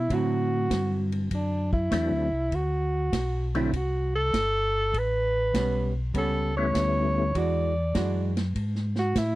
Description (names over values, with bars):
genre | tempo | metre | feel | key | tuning
soul jazz organ trio | 99 BPM | 4/4 | swing 69% on 8ths | unclear | A4 = 440 Hz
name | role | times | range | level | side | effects
breathy tenor saxophone | melody | 0.0-9.4 s | D4 to D5 | -28 LUFS | right 1 dB | none
mellow tonewheel organ | bass | 0.0-9.4 s | G1 to A2 | -28 LUFS | equal | chorus vibrato, slow rotary speaker
archtop guitar, miked and amplified | accompaniment | 0.1-8.3 s | D3 to F#4 | -31 LUFS | right 4 dB | none
warm soul drum kit | drums | 0.1-9.4 s | hi-hat, kick drum, ride cymbal, snare drum | -30 LUFS | equal | none
percussive tonewheel organ | melody | 1.9-7.3 s | F#3 to E4 | -28 LUFS | left 4 dB | slow rotary speaker, chorus vibrato
room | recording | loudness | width
little or no reverb | none | -24 LUFS | side -17 dB against mid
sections
0.0-9.4 A section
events
tenor saxophone solo 0.0-9.4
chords
0.1 D9; 4.9 A9; 7.4 E9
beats
| 0.11 0.71 1.32 1.92 | 2.52 3.13 3.73 4.33 | 4.94 5.54 6.14 6.75 | 7.35 7.96 8.56 9.16